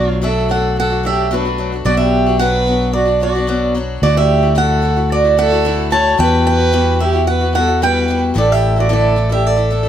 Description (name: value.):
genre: acoustic folk duo or small band.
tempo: 111 BPM.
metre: 4/4.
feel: straight.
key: B minor.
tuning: A4 = 442 Hz.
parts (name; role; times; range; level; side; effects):
picked swing-style acoustic guitar; melody; 0.0-9.9 s; B4 to A5; -16 LUFS; right 3 dB; none.
dark fiddle; second line; 0.0-9.9 s; D4 to C#5; -20 LUFS; right 1 dB; none.
picked acoustic archtop guitar; accompaniment; 0.0-9.9 s; A2 to A4; -20 LUFS; left 5 dB; none.
fingered electric bass; bass; 0.0-9.9 s; A1 to E2; -17 LUFS; equal; none.
room: light reverb.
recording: none.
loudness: -12 LUFS.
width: side -10 dB against mid.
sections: 0.0-1.9 A section; 1.9-9.9 B section.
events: none.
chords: 0.0 Bm7; 1.9 Bm; 4.0 Dadd9; 6.2 Emadd9; 8.3 Asus4.